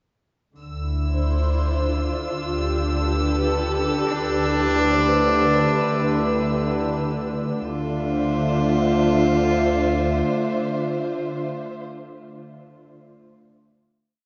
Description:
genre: ambient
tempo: 68 BPM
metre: 4/4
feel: straight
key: D dorian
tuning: A4 = 442 Hz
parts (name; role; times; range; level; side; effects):
- dark studio string section; sustained chords; 0.6-11.9 s; D3 to E5; -26 LUFS; equal; none
- warm sub bass; bass; 0.6-10.2 s; D2; -29 LUFS; equal; none
- warm chamber violin section; texture; 0.6-7.7 s; E6; -36 LUFS; equal; none
- rich cello; melody; 4.1-11.5 s; D4 to F4; -26 LUFS; equal; diffuse ambient delay
- analog drone; drone; 4.3-11.5 s; D3 to A3; -28 LUFS; equal; chorus
room: wet cathedral reverb, RT60 5.5 s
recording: nothing above 7.6 kHz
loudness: -22 LUFS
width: mono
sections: 0.6-7.6 A section; 7.6-11.1 final chord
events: fade-out on sub bass 0.6-7.6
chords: 0.6 Dm9; 2.3 G9/D; 4.1 Am11/D; 5.9 Em7/D; 7.6 Dm9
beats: | 0.56 1.44 2.32 3.21 | 4.09 4.97 5.85 6.74 | 7.62 8.50 9.38 10.27

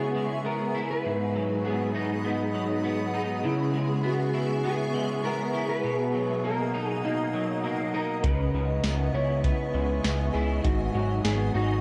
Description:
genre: dream pop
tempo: 100 BPM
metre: 4/4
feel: straight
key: C# dorian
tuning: A4 = 440 Hz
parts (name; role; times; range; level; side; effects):
- mellow electric guitar; melody; 0.0-11.8 s; D#4 to C#5; -34 LUFS; equal; delay, shimmer reverb
- granular cloud pad; sustained chords; 0.0-11.8 s; G#4 to D#6; -36 LUFS; equal; built-in reverb, shimmer reverb
- electric guitar at the edge of break-up; arpeggios; 0.0-11.8 s; G#2 to E4; -31 LUFS; equal; ensemble chorus, delay, shimmer reverb
- fat analog bass; bass; 8.2-11.8 s; G#1 to C#2; -30 LUFS; equal; none
- soft vintage rhythm box; drums; 8.2-11.4 s; hi-hat, kick drum, snare drum, tambourine; -30 LUFS; equal; none
room: wet concert hall reverb, RT60 2.3 s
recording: dark, warm production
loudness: -27 LUFS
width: mono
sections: 0.0-11.8 A section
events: none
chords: 0.0 C#m7; 1.0 G#m7; 3.4 C#m7; 5.8 Bmaj7; 8.2 C#m7; 10.6 G#m7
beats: 0.44 | 1.04 1.64 2.24 2.84 | 3.44 4.04 4.64 5.24 | 5.84 6.44 7.04 7.64 | 8.24 8.84 9.44 10.04 | 10.64 11.24

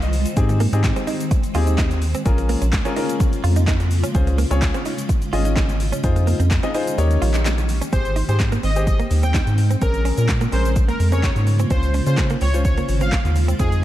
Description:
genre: dance-pop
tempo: 127 BPM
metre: 4/4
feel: straight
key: Ab major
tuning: A4 = 440 Hz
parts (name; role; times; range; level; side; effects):
- warm concert grand piano; accompaniment; 0.0-13.8 s; C4 to Eb5; -27 LUFS; left 4 dB; sidechain pumping
- granular cloud pad; sustained chords; 0.0-13.8 s; Db3 to G5; -28 LUFS; right 1 dB; built-in reverb, sidechain pumping
- round analog bass; bass; 0.0-13.8 s; Ab1 to Db3; -19 LUFS; equal; sidechain pumping
- deep house drum kit; drums; 0.0-13.8 s; handclaps, hi-hat, kick drum, shaker, snare drum; -22 LUFS; equal; overdrive
- direct-recorded clean electric guitar; riff; 0.5-13.7 s; Bb3 to F4; -29 LUFS; right 6 dB; wide subtle chorus
- soft supersaw; melody; 7.9-13.8 s; Ab4 to G5; -27 LUFS; equal; ping-pong delay
room: little or no reverb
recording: dark, warm production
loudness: -17 LUFS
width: side -13 dB against mid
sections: 0.0-7.9 A section; 7.9-13.8 B section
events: grand piano fill 0.0-0.4; kick muted 7.0-7.9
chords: 0.4 Abmaj7; 2.3 Bbm7; 4.1 Dbmaj7; 6.0 Fm7; 7.0 Eb7; 7.9 Abmaj7; 9.8 Bbm7; 11.7 Dbmaj7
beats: | 0.37 0.84 1.31 1.78 | 2.26 2.73 3.20 3.67 | 4.15 4.62 5.09 5.57 | 6.04 6.51 6.98 7.46 | 7.93 8.40 8.87 9.34 | 9.82 10.29 10.76 11.23 | 11.71 12.18 12.65 13.12 | 13.60

